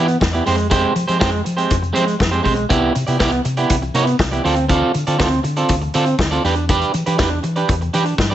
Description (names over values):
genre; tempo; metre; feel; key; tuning
disco; 120 BPM; 4/4; straight; unclear; A4 = 442 Hz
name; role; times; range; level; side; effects
electric guitar at the edge of break-up; accompaniment; 0.0-8.3 s; Ab3 to D5; -18 LUFS; right 3 dB; none
hollow-body short-scale fingered electric bass; bass; 0.0-8.3 s; B1 to F3; -21 LUFS; left 1 dB; none
vintage drum kit; drums; 0.1-8.3 s; hi-hat, kick drum, snare drum; -21 LUFS; left 1 dB; none
room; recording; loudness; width
light reverb, studio reverb; nothing above 8.0 kHz; -15 LUFS; side -11 dB against mid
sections
0.0-8.3 A section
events
none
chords
0.5 Fmadd9; 2.7 Cmaj9; 4.4 Dm7; 6.4 Em7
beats
0.21 | 0.71 1.21 1.71 2.21 | 2.70 3.20 3.70 4.20 | 4.70 5.20 5.69 6.19 | 6.69 7.19 7.69 8.19